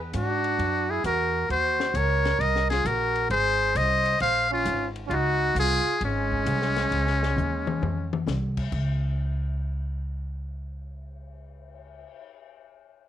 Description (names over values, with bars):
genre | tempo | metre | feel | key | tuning
jazz, small-group swing and bop | 133 BPM | 4/4 | swing 67% on 8ths | Db major | A4 = 440 Hz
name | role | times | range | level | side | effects
upright bass | bass | 0.0-12.0 s | Ab1 to G#2 | -28 LUFS | equal | none
warm trumpet | second line | 0.1-8.2 s | Ab3 to C5 | -31 LUFS | right 14 dB | none
compact cocktail drum kit | drums | 0.1-12.2 s | crash cymbal, cymbal swell, hi-hat, kick drum, ride cymbal, snare drum, toms | -36 LUFS | left 6 dB | none
trumpet with metal mute | melody | 0.2-8.2 s | Db4 to F5 | -24 LUFS | left 3 dB | none
room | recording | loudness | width
little or no reverb | 1960s-style stereo with parts hard left and right | -23 LUFS | side -11 dB against mid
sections
0.0-8.7 A section; 8.7-12.3 B section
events
drum fill 7.4-8.3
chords
0.0 E9; 1.5 Ebm7; 3.3 Ab; 5.1 Dbmaj9; 8.7 N.C.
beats
0.14 0.59 1.04 | 1.50 1.95 2.40 2.85 | 3.30 3.75 4.21 4.66 | 5.11 5.56 6.01 6.47 | 6.92 7.37 7.82 8.27 | 8.72 9.18 9.63 10.08 | 10.53 10.98 11.43 11.89